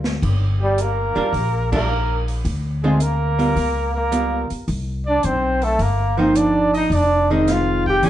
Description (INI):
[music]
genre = jazz, small-group swing and bop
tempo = 108 BPM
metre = 4/4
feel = swing 69% on 8ths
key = G minor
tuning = A4 = 440 Hz
[part]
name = archtop guitar, miked and amplified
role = accompaniment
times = 0.0-8.1 s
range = D3 to Bb4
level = -20 LUFS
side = right 2 dB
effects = none
[part]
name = upright bass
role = bass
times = 0.0-8.1 s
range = F1 to D2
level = -22 LUFS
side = equal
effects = none
[part]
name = open jazz drum kit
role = drums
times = 0.0-8.1 s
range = crash cymbal, hi-hat, kick drum, snare drum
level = -31 LUFS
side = right 1 dB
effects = none
[part]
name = bright trombone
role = melody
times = 0.6-8.1 s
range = G3 to G4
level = -21 LUFS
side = equal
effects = none
[part]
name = bright trumpet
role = second line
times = 0.6-8.1 s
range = G4 to Ab5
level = -25 LUFS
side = right 3 dB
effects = none
[sound]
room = wet studio reverb, RT60 0.9 s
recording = heard from further back in the room, nothing above 10.4 kHz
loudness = -17 LUFS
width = side -12 dB against mid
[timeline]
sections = 0.2-8.1 A section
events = drum fill 0.0; band accent 1.6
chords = 0.2 Gm7; 2.4 Dm7b5; 3.6 C#7#11; 4.7 Cm7; 6.9 Fm7